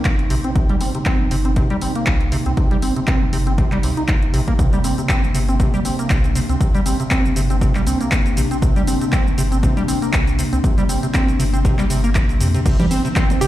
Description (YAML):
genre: acid house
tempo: 119 BPM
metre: 4/4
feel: swing 55% on 16ths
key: C minor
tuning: A4 = 441 Hz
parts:
  - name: warbly tape-like pad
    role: sustained chords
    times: 0.0-13.5 s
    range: C3 to Eb4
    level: -25 LUFS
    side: equal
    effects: chorus, built-in reverb, sidechain pumping
  - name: acid bass, square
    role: riff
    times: 0.0-13.5 s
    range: C3 to Eb4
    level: -22 LUFS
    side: equal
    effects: tube saturation, analog chorus, ping-pong delay
  - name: punchy analog drum machine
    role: drums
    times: 0.0-13.5 s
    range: congas, crash cymbal, handclaps, hi-hat, shaker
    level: -26 LUFS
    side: equal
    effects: overdrive
  - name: electronic kick drum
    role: drums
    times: 0.1-13.3 s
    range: none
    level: -18 LUFS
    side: equal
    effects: overdrive
  - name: warm sub bass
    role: bass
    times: 0.3-13.5 s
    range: G1 to F2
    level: -21 LUFS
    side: equal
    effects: sidechain pumping
  - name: warbly tape-like pad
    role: texture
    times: 13.0-13.5 s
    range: C4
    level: -27 LUFS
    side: right 8 dB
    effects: chorus, built-in reverb, sidechain pumping
  - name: glassy wavetable pluck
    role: melody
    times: 13.4-13.5 s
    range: G4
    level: -16 LUFS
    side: right 5 dB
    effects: chorus, cassette tape
room: light reverb, digital ambience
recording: played on a big sound system in a bare room, stone room reverb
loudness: -15 LUFS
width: side -14 dB against mid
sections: 0.0-12.7 A section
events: none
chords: 0.0 Cm7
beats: 0.05 | 0.56 1.06 1.56 2.07 | 2.57 3.08 3.58 4.08 | 4.59 5.09 5.60 6.10 | 6.61 7.11 7.61 8.12 | 8.62 9.13 9.63 10.13 | 10.64 11.14 11.65 12.15 | 12.66 13.16